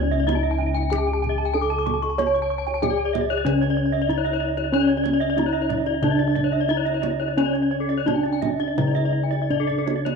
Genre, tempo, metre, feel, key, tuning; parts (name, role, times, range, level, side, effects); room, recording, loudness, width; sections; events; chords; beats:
Balinese gamelan; 80-94 BPM; 4/4; straight; C# pelog; A4 = 440 Hz
gamelan-type bronze metallophone; melody; 0.0-10.2 s; C#4 to C#5; -25 LUFS; equal
gamelan-type bronze metallophone; arpeggios; 0.0-10.1 s; A4-40c to D6; -27 LUFS; left 12 dB
gamelan-type bronze metallophone; arpeggios; 0.0-10.1 s; C#5 to C#6; -29 LUFS; right 11 dB
gamelan-type bossed gongs; bass; 0.0-10.2 s; C#2 to C#5; -25 LUFS; equal
kendang; percussion; 0.1-10.2 s; -31 LUFS; right 11 dB
light reverb, small room ambience; 1960s-style stereo with parts hard left and right; -20 LUFS; side -5 dB against mid
0.0-10.2 A section
drum fill 9.7-10.2
0.28 0.91 1.55 | 2.18 2.82 3.45 4.09 | 4.72 5.37 6.02 6.69 | 7.37 8.06 8.78 9.50